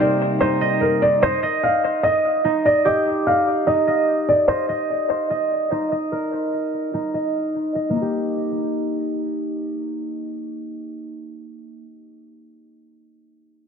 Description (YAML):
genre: hip hop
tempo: 147 BPM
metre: 4/4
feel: half-time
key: Eb major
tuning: A4 = 440 Hz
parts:
  - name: felt-muted upright piano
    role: melody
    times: 0.0-4.7 s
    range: Bb4 to F5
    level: -19 LUFS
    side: equal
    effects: low-pass filter, ping-pong delay
  - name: dark woodwind section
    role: sustained chords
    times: 0.0-1.4 s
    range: C3 to Eb4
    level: -22 LUFS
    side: left 1 dB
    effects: low-pass filter
  - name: concert harp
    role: arpeggios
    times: 0.0-11.9 s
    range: Bb3 to Eb5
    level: -23 LUFS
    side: right 1 dB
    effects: low-pass filter, ping-pong delay
room: light reverb, small room ambience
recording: dense, heavily limited modern master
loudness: -18 LUFS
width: side -6 dB against mid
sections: 0.0-8.0 A section; 8.0-11.2 B section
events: filter sweep 0.0-8.0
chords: 0.0 Cm7; 1.4 Eb; 4.7 Eb5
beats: 0.20 0.61 1.02 | 1.43 1.83 2.24 2.65 | 3.06 3.47 3.88 4.28 | 4.69 5.10 5.51 5.92 | 6.33 6.73 7.14 7.55 | 7.96 8.37 8.77 9.18 | 9.59 10.00 10.41 10.81